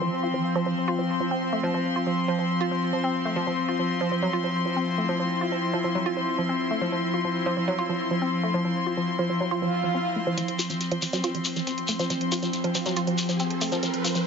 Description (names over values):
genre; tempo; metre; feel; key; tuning
psychedelic trance; 139 BPM; 4/4; straight; unclear; A4 = 441 Hz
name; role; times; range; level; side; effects
evolving wavetable pad; sustained chords; 0.0-14.3 s; F3 to E4; -29 LUFS; left 1 dB; chorus, built-in reverb
woody wave-folded pluck; riff; 0.0-14.2 s; F3 to F4; -28 LUFS; moving between left 2 dB and right 6 dB; chorus, auto-pan, digital delay
clear studio string section; texture; 0.0-14.3 s; F3 to C6; -28 LUFS; left 2 dB; none
swell and riser; sound effects; 9.6-14.3 s; none; -34 LUFS; right 2 dB; none
electronic hi-hat; drums; 10.4-14.2 s; none; -34 LUFS; right 2 dB; overdrive, studio reverb
shekere; percussion; 10.4-14.2 s; none; -31 LUFS; left 4 dB; none
formant-sweep wobble bass; second line; 11.1-12.5 s; C4 to F4; -39 LUFS; right 1 dB; wide subtle chorus, high-pass filter, digital delay
room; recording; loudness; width
light reverb, digital ambience; heavily compressed radio sound, multiband compression, high-pass filter, nothing above 7.6 kHz; -24 LUFS; side -6 dB against mid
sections
0.0-10.4 A section; 10.4-14.3 B section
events
swell 9.6-10.4; build-up 10.4-14.3; riser 10.4-14.3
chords
0.0 F5